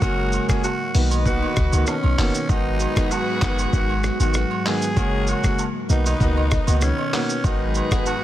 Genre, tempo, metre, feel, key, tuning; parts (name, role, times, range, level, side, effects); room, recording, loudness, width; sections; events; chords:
afrobeats; 97 BPM; 4/4; straight; G# minor; A4 = 440 Hz
growling tenor saxophone; melody; 0.0-8.2 s; C#4 to G#4; -26 LUFS; equal; ping-pong delay
warm horn section; second line; 0.0-8.2 s; D#4 to D#5; -31 LUFS; left 4 dB; ping-pong delay
clear concert grand piano; accompaniment; 0.0-8.1 s; C#3 to F#4; -27 LUFS; right 1 dB
lush unison pad; sustained chords; 0.0-8.2 s; G#2 to B3; -29 LUFS; equal; chorus
clean 808-style bass; bass; 0.0-7.8 s; F#1 to C#2; -21 LUFS; equal
lo-fi sampler-style drum kit; drums; 0.0-8.2 s; handclaps, hi-hat, kick drum, rim click, shaker; -24 LUFS; equal; soft clipping on snare
agogo bells and woodblock; percussion; 0.0-8.2 s; -34 LUFS; right 8 dB
little or no reverb; dense, heavily limited modern master; -18 LUFS; side -13 dB against mid
0.0-8.2 A section
0.0 F#add9; 0.9 Bmaj7; 2.5 G#m7; 5.0 F#add9; 5.9 Bmaj7; 7.4 G#m7